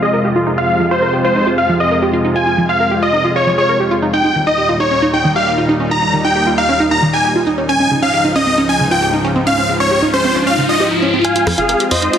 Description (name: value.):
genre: uplifting trance.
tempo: 135 BPM.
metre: 4/4.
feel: straight.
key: F minor.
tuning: A4 = 437 Hz.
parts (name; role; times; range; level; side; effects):
big supersaw lead; melody; 0.0-12.1 s; Ab4 to Bb5; -15 LUFS; equal; cassette tape, low-pass filter, tape echo.
supersaw pad; sustained chords; 0.0-12.2 s; Db2 to F4; -18 LUFS; left 1 dB; none.
wide unison pluck; arpeggios; 0.0-12.2 s; Db3 to Bb4; -18 LUFS; right 2 dB; dub echo.
riser; sound effects; 9.1-11.2 s; none; -20 LUFS; left 2 dB; none.
punchy analog drum machine; drums; 11.2-12.2 s; hi-hat, rim click; -19 LUFS; right 1 dB; studio reverb, soft clipping on snare.
tight sequencer bass; bass; 11.5-12.1 s; F1 to F2; -22 LUFS; equal; none.
room: moderate lush hall reverb, RT60 2.3 s.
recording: dense, heavily limited modern master, low-pass filter.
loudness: -12 LUFS.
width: side -8 dB against mid.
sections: 0.0-11.2 A section.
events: filter sweep on supersaw synth 0.0-11.2; filter sweep 0.0-11.2; riser 9.1-11.2.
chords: 0.0 Fm; 4.1 Eb; 7.7 Dbadd9; 11.2 Fm.